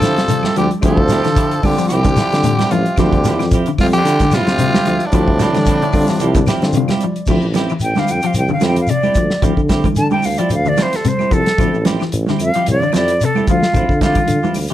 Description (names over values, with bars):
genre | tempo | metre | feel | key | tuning
afrobeat | 112 BPM | 4/4 | swing 55% on 16ths | D minor | A4 = 441 Hz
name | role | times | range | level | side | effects
raspy tenor saxophone | melody | 0.0-6.8 s | D4 to A4 | -19 LUFS | equal | plate reverb
brilliant trombone | second line | 0.0-6.8 s | A2 to F3 | -24 LUFS | right 2 dB | none
clean electric guitar | arpeggios | 0.0-14.7 s | A2 to F3 | -21 LUFS | left 6 dB | ensemble chorus
clean electric guitar | stabs | 0.0-14.7 s | F3 to G4 | -24 LUFS | right 4 dB | analog chorus
warm tuba | bass | 0.0-14.7 s | A1 to D3 | -19 LUFS | equal | none
warm soul drum kit | drums | 0.0-14.7 s | crash cymbal, hi-hat, kick drum, snare drum | -19 LUFS | equal | none
claves | percussion | 0.0-14.7 s | none | -36 LUFS | left 5 dB | none
shekere | percussion | 0.0-14.7 s | none | -23 LUFS | left 1 dB | none
overdriven tine electric piano | accompaniment | 0.2-7.3 s | G3 to G5 | -24 LUFS | left 3 dB | none
congas | percussion | 0.3-14.6 s | none | -22 LUFS | right 5 dB | none
silver concert flute | melody | 7.8-14.5 s | F4 to A5 | -18 LUFS | equal | slapback echo, plate reverb
room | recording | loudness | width
moderate club reverb, RT60 0.5 s | none | -13 LUFS | side -12 dB against mid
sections
0.0-7.3 A section; 7.3-14.7 B section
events
tine electric piano fill 6.2-7.3; flute solo 7.3-14.7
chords
0.0 Dm11